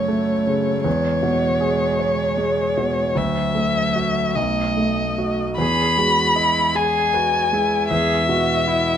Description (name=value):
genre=neoclassical piano and strings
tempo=52 BPM (dotted quarters)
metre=6/8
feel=rubato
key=E major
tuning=A4 = 440 Hz
part: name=muted violin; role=melody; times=0.0-9.0 s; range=C#5 to B5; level=-20 LUFS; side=left 2 dB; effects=plate reverb
part: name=muted cello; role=second line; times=0.0-9.0 s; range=F#3 to G#4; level=-26 LUFS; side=right 8 dB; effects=none
part: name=clear concert grand piano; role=accompaniment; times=0.0-9.0 s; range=B1 to E5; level=-22 LUFS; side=equal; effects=none
room=moderate studio ambience, RT60 0.5 s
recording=none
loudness=-17 LUFS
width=side -9 dB against mid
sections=0.0-5.6 A section; 5.6-9.0 B section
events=none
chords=0.0 F#m; 0.9 E6; 3.2 Dadd9; 4.4 B7; 5.6 Emaj7